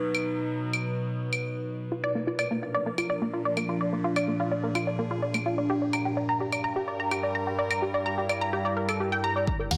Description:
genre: melodic techno.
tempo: 127 BPM.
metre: 4/4.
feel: straight.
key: unclear.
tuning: A4 = 438 Hz.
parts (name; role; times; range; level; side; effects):
evolving wavetable pad; sustained chords; 0.0-9.8 s; G2 to B4; -33 LUFS; equal; phaser, built-in reverb, vintage 12-bit sampler grit, sidechain pumping.
electronic claves and hi-hat; drums; 0.1-9.8 s; none; -34 LUFS; equal; high-pass filter on perc, high-pass filter on hats, high-pass filter on room.
tight sequenced synth; arpeggios; 1.9-9.8 s; Bb3 to Bb5; -30 LUFS; equal; chorus, sidechain pumping, delay.
electronic kick drum; drums; 9.5-9.6 s; none; -31 LUFS; equal; none.
dark detuned saw bass; bass; 9.7-9.8 s; Eb2; -29 LUFS; equal; sidechain pumping.
room: wet lush hall reverb, RT60 1.7 s.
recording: dense, heavily limited modern master.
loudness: -28 LUFS.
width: mono.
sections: 0.0-9.5 A section.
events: none.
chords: 0.0 B; 1.9 Bb; 5.7 Gm.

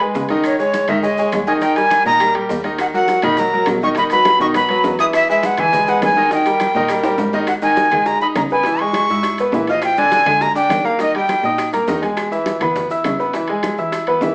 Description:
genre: latin, salsa.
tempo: 205 BPM.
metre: 4/4.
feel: straight.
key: unclear.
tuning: A4 = 439 Hz.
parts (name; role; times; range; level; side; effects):
bright grand piano; accompaniment; 0.0-14.3 s; D3 to E6; -21 LUFS; equal; none.
clear cello; bass; 0.0-14.3 s; D#2 to E3; -30 LUFS; equal; none.
congas; percussion; 0.0-14.3 s; none; -34 LUFS; equal; none.
timbales; percussion; 0.0-14.3 s; none; -30 LUFS; equal; none.
maracas; percussion; 0.1-14.3 s; none; -45 LUFS; equal; none.
claves; percussion; 0.4-14.1 s; none; -36 LUFS; equal; none.
breathy bright jazz flute; melody; 0.5-11.7 s; C#5 to D#6; -18 LUFS; equal; none.
bongos; percussion; 2.8-14.3 s; none; -31 LUFS; equal; none.
room: moderate large studio reverb, RT60 1.1 s.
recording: band playing live in one room, small speaker sound.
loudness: -17 LUFS.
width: mono.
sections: 0.0-7.5 A section; 7.5-14.3 B section.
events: drum fill 7.0-7.5.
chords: 0.4 C#sus2; 1.6 D#; 2.8 D#m; 4.0 B; 5.1 E; 6.3 D#; 7.5 G#m; 8.7 C#m7; 9.8 A#6; 11.0 D#; 12.2 E6; 13.3 C#m7.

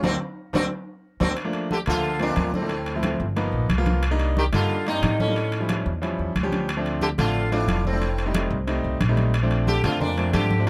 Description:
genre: Afro-Cuban jazz.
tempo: 181 BPM.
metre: 4/4.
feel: straight.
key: unclear.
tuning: A4 = 440 Hz.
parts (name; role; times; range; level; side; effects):
sitar; melody; 0.0-10.7 s; C4 to G4; -31 LUFS; equal; none.
bright grand piano; accompaniment; 0.0-10.7 s; F3 to G4; -30 LUFS; equal; none.
upright bass; bass; 0.0-10.7 s; F1 to A2; -28 LUFS; equal; none.
congas; percussion; 0.0-10.7 s; none; -31 LUFS; equal; none.
timbales; percussion; 0.0-10.7 s; none; -35 LUFS; equal; none.
warm baritone saxophone; second line; 1.7-10.7 s; A2 to Eb3; -31 LUFS; equal; none.
room: light reverb.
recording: close, detailed microphones.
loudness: -24 LUFS.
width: mono.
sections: 0.0-1.4 A section; 1.4-10.7 B section.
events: band accent 0.0-1.4; grand piano fill 0.7-1.4.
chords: 0.0 Daug7; 1.4 Bbmaj9/D; 2.7 Dm7; 3.4 G7alt; 4.0 Cm9; 5.4 A7b13; 6.7 Dm7; 8.0 F7; 9.3 Bbmaj7.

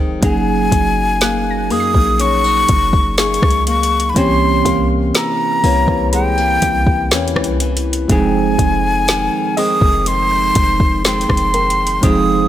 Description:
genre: contemporary R&B.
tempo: 61 BPM.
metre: 4/4.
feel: straight.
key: unclear.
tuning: A4 = 441 Hz.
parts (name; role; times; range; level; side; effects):
bell-like tine electric piano; accompaniment; 0.0-12.5 s; E3 to Ab4; -20 LUFS; moving between right 2 dB and right 10 dB; auto-pan.
nylon-string guitar; arpeggios; 0.0-12.5 s; F2 to Ab4; -22 LUFS; left 6 dB; none.
warm 808-style bass; bass; 0.0-12.5 s; F1 to Gb2; -20 LUFS; equal; none.
soft round pluck; texture; 0.0-12.5 s; Bb4 to C7; -28 LUFS; right 1 dB; chorus, digital delay.
breathy jazz flute; melody; 0.2-12.5 s; G5 to Eb6; -17 LUFS; left 2 dB; none.
smooth R&B drum kit; drums; 0.2-12.3 s; hi-hat, kick drum, rim click, snare drum; -17 LUFS; equal; none.
room: little or no reverb.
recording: none.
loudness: -12 LUFS.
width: side -12 dB against mid.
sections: 0.2-12.5 A section.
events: drum fill 0.0.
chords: 0.2 Gb69; 4.2 C7b9; 8.1 Fm7.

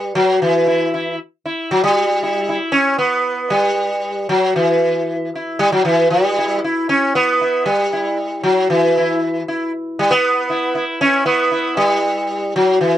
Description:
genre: indian classical.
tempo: 116 BPM.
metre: 4/4.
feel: straight.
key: E raga shivaranjani.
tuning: A4 = 439 Hz.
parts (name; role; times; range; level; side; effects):
sitar; solo; 0.0-13.0 s; E3 to E4; -14 LUFS; equal; none.
room: little or no reverb.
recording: dry, close 1970s-style studio recording.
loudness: -14 LUFS.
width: side -12 dB against mid.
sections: 0.0-12.8 A section.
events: none.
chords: none.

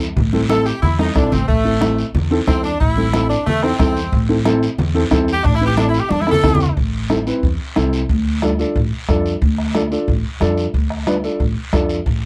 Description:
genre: latin, cumbia.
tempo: 182 BPM.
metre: 4/4.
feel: straight.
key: A minor.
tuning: A4 = 440 Hz.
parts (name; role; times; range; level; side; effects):
upright bass; bass; 0.0-12.3 s; A1 to F2; -22 LUFS; equal; none.
guiro; percussion; 0.0-12.3 s; none; -35 LUFS; equal; none.
bombo; percussion; 0.2-12.2 s; none; -24 LUFS; equal; none.
congas; percussion; 0.2-12.2 s; none; -26 LUFS; equal; none.
dark upright piano; accompaniment; 0.3-12.0 s; C4 to B4; -22 LUFS; equal; none.
edgy saxophone section; melody; 0.5-6.8 s; A3 to A4; -22 LUFS; equal; none.
room: light reverb.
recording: dry, close 1970s-style studio recording.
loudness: -17 LUFS.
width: mono.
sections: 0.0-6.8 A section; 6.8-12.3 B section.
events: saxophone section solo 0.0-6.8; drum fill 1.0-1.5, 6.1-6.8.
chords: 0.0 Am; 8.1 Dm.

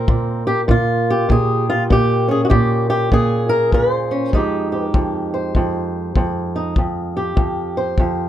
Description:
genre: acoustic country blues, solo or duo.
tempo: 99 BPM.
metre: 4/4.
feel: swing 62% on 8ths.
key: F minor.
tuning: A4 = 440 Hz.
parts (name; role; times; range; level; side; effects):
fingerpicked swing-style acoustic guitar; melody; 0.0-8.3 s; F2 to C5; -16 LUFS; right 1 dB; none.
kick drum; drums; 0.1-8.2 s; none; -18 LUFS; left 1 dB; none.
room: light reverb.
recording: dark, warm production.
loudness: -15 LUFS.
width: side -11 dB against mid.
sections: 0.0-8.3 A section.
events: none.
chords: 0.0 Bbm9; 4.3 Fm9.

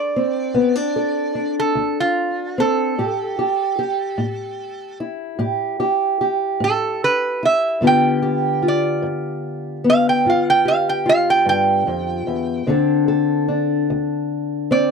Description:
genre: acoustic country blues, solo or duo.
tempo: 50 BPM (dotted quarters).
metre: 12/8.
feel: straight.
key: unclear.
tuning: A4 = 439 Hz.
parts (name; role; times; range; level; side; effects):
lap resonator guitar; melody; 0.0-14.9 s; F4 to G5; -18 LUFS; right 3 dB; none.
fingerpicked old ladder-braced acoustic guitar; accompaniment; 0.0-14.9 s; D2 to A4; -19 LUFS; left 2 dB; none.
room: little or no reverb.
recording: dry, close 1970s-style studio recording.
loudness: -17 LUFS.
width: side -5 dB against mid.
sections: 0.0-14.9 A section.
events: none.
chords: 0.0 D5; 3.0 A5; 7.8 G7; 12.7 D7(no3).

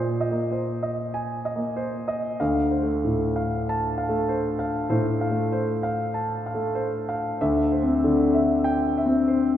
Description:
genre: classical, impressionist solo piano.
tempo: 48 BPM.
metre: 4/4.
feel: rubato.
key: unclear.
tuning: A4 = 440 Hz.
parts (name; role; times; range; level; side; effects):
warm grand piano; solo; 0.0-9.6 s; D2 to A5; -22 LUFS; left 1 dB; none.
room: wet scoring stage reverb, RT60 1.9 s.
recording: heard from further back in the room.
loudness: -22 LUFS.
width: side -11 dB against mid.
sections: 0.0-9.6 A section.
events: none.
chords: 0.0 Abadd9/Bb; 2.4 Dm7; 7.4 Cadd9/D.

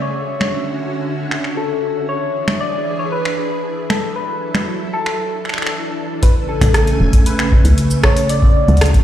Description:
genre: IDM.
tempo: 116 BPM.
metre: 4/4.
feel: straight.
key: A major.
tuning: A4 = 440 Hz.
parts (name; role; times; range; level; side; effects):
soft struck synth lead; melody; 0.0-9.0 s; A4 to D5; -22 LUFS; left 2 dB; chorus, phaser, tape echo.
soft string machine; sustained chords; 0.0-9.0 s; C#3 to G#5; -22 LUFS; equal; ensemble chorus, sidechain pumping.
bubbling stepped-filter texture; texture; 0.0-6.2 s; E5; -35 LUFS; equal; chorus, built-in reverb.
electro analog drum machine; drums; 0.4-9.0 s; cabasa, congas, finger snaps, hi-hat, rim click; -21 LUFS; right 1 dB; low-pass filter on snare, low-pass filter on perc, low-pass filter on hats, low-pass filter on room.
electronic kick drum; drums; 6.2-9.0 s; none; -13 LUFS; equal; none.
woody FM bass; bass; 6.6-9.0 s; E1 to D2; -13 LUFS; equal; none.
room: light reverb, digital ambience.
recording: played on a big sound system in a bare room, stone room reverb.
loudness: -14 LUFS.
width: side -11 dB against mid.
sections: 0.0-6.2 A section; 6.2-9.0 B section.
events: filter sweep on drum 0.0-6.2.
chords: 0.0 Dmaj7; 2.1 E7; 4.2 F#m7; 5.2 E7sus4; 6.2 Amaj7; 8.3 Dmaj7.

